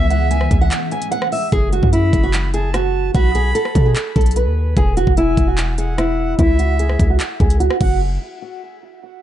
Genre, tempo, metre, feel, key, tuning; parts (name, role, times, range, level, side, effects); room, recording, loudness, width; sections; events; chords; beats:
hip hop, trap; 148 BPM; 4/4; half-time; F# minor; A4 = 439 Hz
fingerpicked steel-string acoustic guitar; melody; 0.0-8.0 s; E4 to G#5; -20 LUFS; right 2 dB; low-pass filter, ping-pong delay
breathy bright jazz flute; second line; 0.0-8.0 s; E5 to B5; -28 LUFS; right 3 dB; ping-pong delay
granular cloud pad; sustained chords; 0.0-1.5 s; E3 to G#4; -28 LUFS; equal; built-in reverb
hard-hitting 808-style bass; bass; 0.0-8.2 s; E1 to B2; -17 LUFS; equal
trap drum kit; drums; 0.1-7.9 s; crash cymbal, handclaps, hi-hat, kick drum, rim click; -18 LUFS; equal; overdrive
little or no reverb; dark, warm production, nothing above 11.0 kHz; -14 LUFS; side -12 dB against mid
0.0-1.5 A section; 1.5-8.0 B section; 8.0-9.2 C section
break 0.7-1.5; filter sweep on steel-string acoustic guitar 1.5-8.0
0.0 C#m; 1.5 F#m; 3.1 B; 4.8 E; 6.4 C#m; 7.8 N.C.
0.31 0.71 1.12 | 1.52 1.93 2.33 2.74 | 3.15 3.55 3.96 4.36 | 4.77 5.17 5.58 5.98 | 6.39 6.79 7.20 7.61 | 8.01